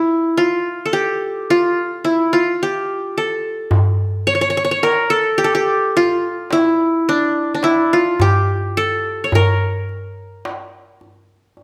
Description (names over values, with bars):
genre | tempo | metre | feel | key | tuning
Arabic maqam ensemble | 107 BPM (eighths) | 10/8 | straight | unclear | A4 = 440 Hz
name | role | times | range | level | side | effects
qanun | melody | 0.0-11.6 s | D4 to C#5 | -18 LUFS | equal | none
darbuka | percussion | 3.7-11.6 s | none | -21 LUFS | equal | none
room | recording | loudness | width
moderate recital hall reverb, RT60 1.3 s | none | -17 LUFS | mono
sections
0.0-11.6 A section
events
none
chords
none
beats
0.36 0.92 1.48 2.04 2.60 3.16 | 3.72 4.28 4.84 5.40 5.96 6.52 7.08 7.64 8.20 8.76 | 9.32 9.88 10.44 11.00 11.55